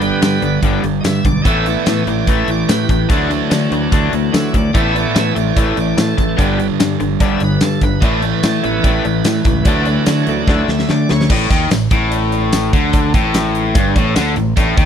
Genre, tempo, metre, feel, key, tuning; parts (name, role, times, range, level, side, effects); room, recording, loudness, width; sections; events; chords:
classic rock; 146 BPM; 4/4; straight; A4 = 440 Hz
bright tonewheel organ; sustained chords; 0.0-11.3 s; D3 to E5; -22 LUFS; right 2 dB; overdrive, slow rotary speaker
crunchy overdriven guitar; riff; 0.0-14.9 s; G2 to D4; -20 LUFS; right 17 dB
overdriven electric guitar; riff; 0.0-14.9 s; G2 to D4; -18 LUFS; left 10 dB
growling fingered electric bass; bass; 0.0-14.9 s; G1 to D3; -20 LUFS; equal; overdrive
big rock drum kit; drums; 0.0-14.9 s; crash cymbal, hi-hat, kick drum, snare drum, tambourine; -17 LUFS; equal
cowbell; percussion; 4.7-14.7 s; -33 LUFS; left 4 dB
little or no reverb; dry, close 1970s-style studio recording; -12 LUFS; side -8 dB against mid
0.0-11.3 A section; 11.3-14.9 B section
tonewheel organ solo 0.0-11.3; drum fill 10.5-11.3
0.0 G; 1.5 Asus2; 3.1 Dadd9; 4.7 Asus2; 6.4 G; 8.0 Asus2; 9.7 Dadd9; 11.3 D#maj7#11